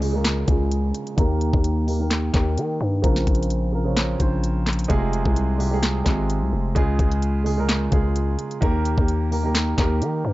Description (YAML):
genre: hip hop, trap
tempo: 129 BPM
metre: 4/4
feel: half-time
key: unclear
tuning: A4 = 440 Hz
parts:
  - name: dark baby grand piano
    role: accompaniment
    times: 0.0-10.3 s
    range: C3 to Db5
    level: -25 LUFS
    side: right 2 dB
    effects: low-pass filter
  - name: growling 808-style bass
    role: bass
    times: 0.0-10.3 s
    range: F1 to Eb3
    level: -22 LUFS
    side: left 1 dB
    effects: none
  - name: trap drum kit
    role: drums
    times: 0.0-10.1 s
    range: handclaps, hi-hat, kick drum, snare drum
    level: -22 LUFS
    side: left 1 dB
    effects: none
  - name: downlifter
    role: sound effects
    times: 0.0-1.2 s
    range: none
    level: -44 LUFS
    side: equal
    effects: none
room: little or no reverb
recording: dry, gritty hardware recording, nothing above 7.7 kHz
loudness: -19 LUFS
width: side -17 dB against mid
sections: 0.0-10.3 A section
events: filter sweep on grand piano 0.0-4.9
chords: 0.0 Db; 1.2 Eb; 3.0 Bbmadd9; 4.9 Fm; 6.8 Db; 8.6 Eb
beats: 0.25 0.71 | 1.18 1.64 2.11 2.57 | 3.04 3.50 3.97 4.43 | 4.90 5.36 5.83 6.29 | 6.76 7.22 7.69 8.15 | 8.62 9.09 9.55 10.02